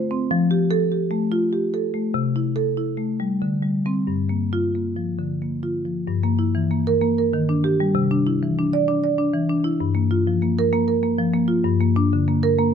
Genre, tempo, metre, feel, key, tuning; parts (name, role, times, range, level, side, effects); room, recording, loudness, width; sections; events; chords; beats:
classical, contemporary piece for solo marimba; 96 BPM; 3/4; rubato; G dorian; A4 = 438 Hz
marimba with medium mallets; solo; 0.0-12.7 s; G2 to D5; -19 LUFS; equal
light reverb; close, detailed microphones; -19 LUFS; side -7 dB against mid
0.0-6.1 A section; 6.1-12.7 B section
0.3 Fadd9; 2.2 C6; 3.4 D7sus4; 4.1 Gm7; 6.1 Gm6; 7.3 Ebmaj7; 8.0 Cadd9; 9.8 Gm7; 11.6 Bb/G
| 0.30 0.92 1.54 | 2.17 2.79 3.42 | 4.08 4.75 5.41 | 6.07 6.70 7.33 | 7.95 8.57 9.19 | 9.81 10.42 11.03 | 11.65 12.27